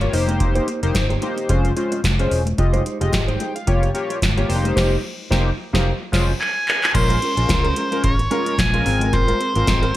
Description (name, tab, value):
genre	early-eighties boogie funk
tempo	110 BPM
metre	4/4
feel	swing 56% on 16ths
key	unclear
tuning	A4 = 441 Hz
part	chorused polysynth	accompaniment	0.0-9.9 s	Ab3 to G5	-23 LUFS	left 2 dB	none
part	mellow electric guitar	riff	0.0-10.0 s	Ab3 to C5	-28 LUFS	right 3 dB	analog chorus
part	vintage muted fingered electric bass	bass	0.0-9.9 s	E1 to Db2	-21 LUFS	equal	none
part	booming analog drum machine	drums	0.0-10.0 s	crash cymbal, handclaps, hi-hat, kick drum, snare drum	-21 LUFS	equal	gated reverb
part	congas	percussion	0.3-9.8 s	none	-31 LUFS	left 3 dB	none
part	nasal lead guitar with a parked wah	melody	6.4-10.0 s	C5 to Ab5	-21 LUFS	equal	overdrive
room	little or no reverb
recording	none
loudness	-17 LUFS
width	side -14 dB against mid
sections	0.0-6.9 A section; 6.9-10.0 B section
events	band accent 4.8-6.9; drum fill 6.4-6.9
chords	0.1 Cm7/F; 1.5 Dbmaj7/F; 2.6 Fm9; 3.7 Gm7b5/F; 4.5 Cm7/F; 5.9 Dbmaj7; 6.4 N.C.; 6.9 Bbm7; 8.9 Ab69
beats	| 0.40 0.95 1.49 2.04 | 2.58 3.13 3.68 4.22 | 4.77 5.31 5.86 6.40 | 6.95 7.49 8.04 8.59 | 9.13 9.68